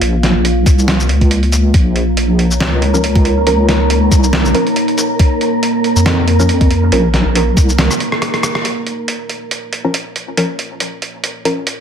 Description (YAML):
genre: deep dubstep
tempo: 139 BPM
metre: 4/4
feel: swing 56% on 16ths, half-time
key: Bb minor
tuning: A4 = 440 Hz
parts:
  - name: deep dark ambient pad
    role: sustained chords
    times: 0.0-11.8 s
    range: Bb3 to F5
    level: -19 LUFS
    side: equal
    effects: chorus, built-in reverb
  - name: deep soft wobble bass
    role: bass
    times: 0.0-7.9 s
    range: Bb1 to F2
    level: -13 LUFS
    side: equal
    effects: chorus
  - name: trip hop sampler-style drum kit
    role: drums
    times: 0.0-11.8 s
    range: hi-hat, rim click, shaker, snare drum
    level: -18 LUFS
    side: right 1 dB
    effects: none
  - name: electronic kick drum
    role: drums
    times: 0.7-7.7 s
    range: none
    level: -11 LUFS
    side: equal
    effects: overdrive
  - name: wind-like tuned noise texture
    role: texture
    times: 2.4-8.7 s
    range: Bb4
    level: -22 LUFS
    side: right 3 dB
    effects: built-in reverb
  - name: filtered dub chord stab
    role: stabs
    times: 2.9-7.0, 9.8-11.6 s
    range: F3 to Bb4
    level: -20 LUFS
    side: equal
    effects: chorus, dub echo
room: light reverb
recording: none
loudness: -11 LUFS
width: side -8 dB against mid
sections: 0.0-8.6 A section; 8.6-11.8 B section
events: drum fill 7.8-8.6; break 8.2-8.6; band accent 8.5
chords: 0.0 Bbm